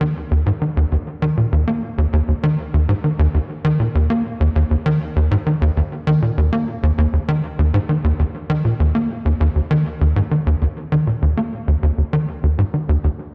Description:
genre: ambient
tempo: 99 BPM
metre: 4/4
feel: straight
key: unclear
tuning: A4 = 440 Hz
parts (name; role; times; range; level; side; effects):
- tight sequencer bass; solo; 0.0-13.1 s; Eb2 to Bb3; -18 LUFS; equal; lush chorus, tape echo
room: moderate plate reverb, RT60 2.8 s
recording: echo-heavy mix, nothing above 10.4 kHz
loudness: -19 LUFS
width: mono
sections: 0.0-10.6 A section; 10.6-13.3 B section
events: none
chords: none

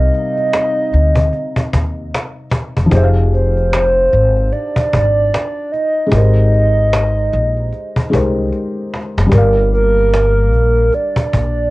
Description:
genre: lo-fi hip hop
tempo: 75 BPM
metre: 4/4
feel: swing 61% on 16ths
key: F dorian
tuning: A4 = 440 Hz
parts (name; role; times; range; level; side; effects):
- hollow clarinet-like synth lead; melody; 0.0-11.7 s; Bb4 to Eb5; -16 LUFS; right 1 dB; chorus
- felt-muted upright piano; accompaniment; 0.0-11.7 s; C3 to F5; -21 LUFS; left 2 dB; none
- upright bass; bass; 0.0-11.7 s; E1 to Eb2; -14 LUFS; equal; none
- cajon; drums; 0.1-11.6 s; none; -18 LUFS; equal; none
room: little or no reverb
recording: cassette tape, nothing above 10.9 kHz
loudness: -12 LUFS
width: side -19 dB against mid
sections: 0.0-11.7 A section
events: drum fill 8.5-9.3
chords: 0.0 Cm11; 2.9 Fm9; 6.1 Abmaj9; 9.3 Gm7

